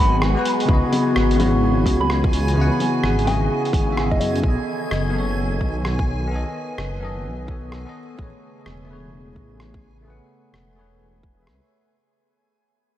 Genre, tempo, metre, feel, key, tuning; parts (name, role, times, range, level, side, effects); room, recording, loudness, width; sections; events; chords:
future garage; 128 BPM; 4/4; swing 63% on 16ths; A4 = 441 Hz
soft synth bell; melody; 0.0-4.3 s; D#5 to B5; -28 LUFS; right 1 dB; chorus, phaser, tape echo
bell-like tine electric piano; accompaniment; 0.0-12.0 s; C#3 to F#5; -25 LUFS; left 1 dB; lush chorus, sidechain pumping, low-pass filter, tape echo
warbly tape-like pad; sustained chords; 0.0-11.9 s; C#3 to B4; -26 LUFS; left 2 dB; chorus, built-in reverb, sidechain pumping
swelling detuned saw bass; bass; 0.0-11.6 s; E1 to F#2; -22 LUFS; equal; sidechain pumping
backwards swelling texture; texture; 0.0-11.9 s; G#5; -33 LUFS; right 2 dB; built-in reverb
lo-fi sampler-style drum kit; drums; 0.2-11.6 s; bongos, hi-hat, rim click; -29 LUFS; left 1 dB; vintage 12-bit sampler grit
electronic kick drum; drums; 0.7-11.4 s; -20 LUFS; equal; overdrive, vintage 12-bit sampler grit
moderate huge ambient reverb, RT60 7.6 s; dreamy mix soaked in reverb, vinyl crackle; -18 LUFS; side -12 dB against mid
0.0-11.9 A section
fade-out 0.0-11.9
0.0 G#m7; 0.7 C#m11; 4.4 B7; 8.2 Amaj9